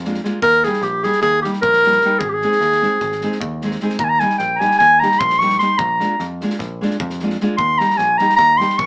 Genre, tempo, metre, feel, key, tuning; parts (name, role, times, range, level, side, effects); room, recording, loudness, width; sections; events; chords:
balkan folk, Balkan wedding band; 302 BPM (eighths); 9/8; straight; A4 = 441 Hz
picked electric bass; bass; 0.0-8.9 s; Ab1 to F2; -27 LUFS; equal
loose indie drum kit; percussion; 0.0-8.9 s; kick drum, snare drum; -31 LUFS; equal
nylon-string guitar; accompaniment; 0.1-8.7 s; G3 to Ab4; -22 LUFS; equal
clear clarinet; melody; 0.4-8.9 s; G4 to Db6; -13 LUFS; equal
moderate studio ambience, RT60 0.5 s; band playing live in one room, small speaker sound; -14 LUFS; side -26 dB against mid
0.0-4.0 A section; 4.0-8.9 A section
0.4 Eb; 2.2 Ab; 4.0 Eb; 5.8 Bb7; 7.6 Eb